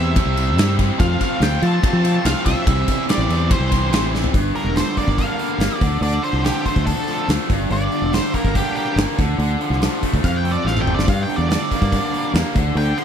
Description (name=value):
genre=classic rock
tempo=142 BPM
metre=4/4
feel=straight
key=G dorian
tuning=A4 = 440 Hz
part: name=octave-fuzz lead guitar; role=melody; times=0.0-13.0 s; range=G4 to C6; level=-26 LUFS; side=right 2 dB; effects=distortion, tape echo
part: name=overdriven electric guitar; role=riff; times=0.0-13.0 s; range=F2 to F4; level=-25 LUFS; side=right 14 dB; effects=none
part: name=tight distorted guitar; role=riff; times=0.0-13.0 s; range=F2 to F4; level=-25 LUFS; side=left 13 dB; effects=distortion
part: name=fingered electric bass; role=bass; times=0.0-12.9 s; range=E1 to F3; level=-20 LUFS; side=equal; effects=none
part: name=gated 80s drum kit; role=drums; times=0.2-13.0 s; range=hi-hat, kick drum, ride cymbal, snare drum, toms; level=-21 LUFS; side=equal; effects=none
room=little or no reverb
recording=faint mains hum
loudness=-16 LUFS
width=side -8 dB against mid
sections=0.0-4.3 A section; 4.3-13.0 B section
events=drum fill 4.1, 10.7-11.1; lead electric guitar solo 4.3-13.0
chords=0.0 C; 1.0 F; 2.7 C; 4.3 Gm; 5.8 Dm; 7.5 Gm; 9.2 Dm; 10.2 F; 11.1 Gm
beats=0.16 0.58 | 0.99 1.41 1.83 2.25 | 2.67 3.08 3.50 3.92 | 4.34 4.76 5.18 5.60 | 6.02 6.44 6.87 7.29 | 7.71 8.13 8.55 8.97 | 9.39 9.81 10.23 10.66 | 11.08 11.50 11.92 12.34 | 12.76